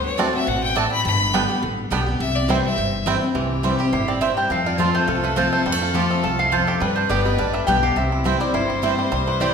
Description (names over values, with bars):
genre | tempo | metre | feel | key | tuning
bluegrass | 208 BPM | 4/4 | swing 54% on 8ths | C major | A4 = 440 Hz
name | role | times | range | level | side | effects
clear fiddle | second line | 0.0-9.5 s | G4 to B5 | -26 LUFS | left 3 dB | none
picked steel-string acoustic guitar | accompaniment | 0.0-9.5 s | E2 to G4 | -23 LUFS | left 2 dB | none
upright bass | bass | 0.0-9.5 s | G1 to G2 | -26 LUFS | equal | none
bluegrass banjo | arpeggios | 0.2-9.5 s | E3 to G4 | -26 LUFS | right 4 dB | none
mandolin | stabs | 0.2-9.5 s | B3 to A5 | -27 LUFS | right 6 dB | none
lap resonator guitar | melody | 3.9-9.5 s | A4 to A5 | -24 LUFS | equal | none
room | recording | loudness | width
wet recital hall reverb, RT60 1.6 s | recorded in a church or concert hall | -18 LUFS | side -6 dB against mid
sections
0.0-3.4 A section; 3.4-9.5 B section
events
fiddle solo 0.0-3.4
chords
0.0 D7; 1.1 G; 2.2 C; 4.5 F; 6.8 G; 8.0 C